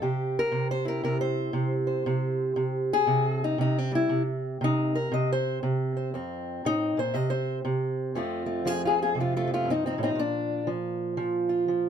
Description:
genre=acoustic country blues, solo or duo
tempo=118 BPM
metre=4/4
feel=swing 63% on 8ths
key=F major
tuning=A4 = 440 Hz
part: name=fingerpicked steel-string acoustic guitar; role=solo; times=0.0-11.9 s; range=F2 to Eb5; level=-25 LUFS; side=equal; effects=none
room=wet booth ambience, RT60 0.3 s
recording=none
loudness=-25 LUFS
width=side -8 dB against mid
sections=0.0-8.2 A section; 8.2-11.9 A section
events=steel-string acoustic guitar solo 0.0-8.2, 8.2-11.9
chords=0.0 C; 6.1 F; 7.1 N.C.; 8.2 F; 10.2 Bb

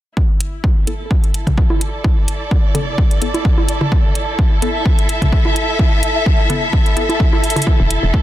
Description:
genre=minimal techno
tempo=128 BPM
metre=4/4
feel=swing 55% on 16ths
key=unclear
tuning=A4 = 440 Hz
part: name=electronic kick drum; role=drums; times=0.2-8.2 s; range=none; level=-14 LUFS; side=equal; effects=overdrive
part: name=warm studio string section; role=texture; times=0.2-8.2 s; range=E4 to E5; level=-20 LUFS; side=equal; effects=sidechain pumping
part: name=electronic hi-hat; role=drums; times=0.4-8.0 s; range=none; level=-24 LUFS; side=equal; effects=overdrive
part: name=wavetable chord stab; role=stabs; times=0.9-7.0 s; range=B3 to A4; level=-26 LUFS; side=left 3 dB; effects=dub echo
part: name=electronic toms and congas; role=percussion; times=1.5-7.8 s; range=none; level=-22 LUFS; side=right 1 dB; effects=dub echo
part: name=hollow knocking FM bass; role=bass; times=7.8-8.1 s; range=E1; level=-16 LUFS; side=equal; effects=sidechain pumping
room=light reverb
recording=dense, heavily limited modern master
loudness=-13 LUFS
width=side -14 dB against mid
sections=0.2-7.7 A section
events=fade-in on string section 0.2-7.7; filter sweep on synth stab 0.2-7.7; drum fill 7.4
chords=0.2 Esus4

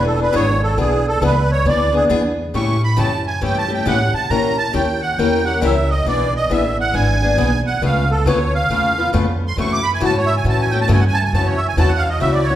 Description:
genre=acoustic string swing (jazz manouche)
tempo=136 BPM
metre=4/4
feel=swing 63% on 8ths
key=E mixolydian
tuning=A4 = 439 Hz
part: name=musette accordion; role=melody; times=0.0-12.5 s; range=G#4 to D6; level=-20 LUFS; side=right 2 dB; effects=none
part: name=picked acoustic archtop guitar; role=accompaniment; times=0.0-12.6 s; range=C#3 to B4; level=-19 LUFS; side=left 3 dB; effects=none
part: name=upright bass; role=bass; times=0.0-12.6 s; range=E1 to A#2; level=-19 LUFS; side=equal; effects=none
room=wet recital hall reverb, RT60 1.3 s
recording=recorded in a church or concert hall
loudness=-15 LUFS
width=side -12 dB against mid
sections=0.0-12.6 A section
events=accordion solo 0.0-12.6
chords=0.0 E7; 2.5 A7; 4.3 A#dim7; 6.1 E7; 7.8 C#7alt; 9.6 F#m7

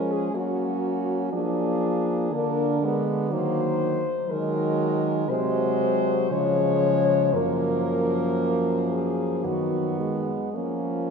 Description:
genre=classical, lyrical piece for horn quartet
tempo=53-62 BPM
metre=3/4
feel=rubato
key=unclear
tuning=A4 = 440 Hz
part: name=clear French horn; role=melody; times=0.0-11.1 s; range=F4 to Db5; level=-27 LUFS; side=left 7 dB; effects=none
part: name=clear French horn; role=second line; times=0.0-11.1 s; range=Ab3 to D4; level=-28 LUFS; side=right 7 dB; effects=none
part: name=mellow French horn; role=accompaniment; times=0.0-11.1 s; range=F3 to Bb3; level=-28 LUFS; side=left 3 dB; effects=none
part: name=mellow French horn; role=bass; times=0.0-11.1 s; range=Gb2 to Gb3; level=-28 LUFS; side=right 2 dB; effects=none
room=wet church reverb, RT60 3.3 s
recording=minimal, uncompressed stereo recording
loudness=-22 LUFS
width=side -5 dB against mid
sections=0.0-11.1 A section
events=none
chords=0.3 Gb; 1.3 Bb7/F; 3.3 Ebm; 4.3 Ab7/Eb; 6.3 Db; 7.3 Gbmaj7; 9.4 B/D#; 10.5 Bbm/F

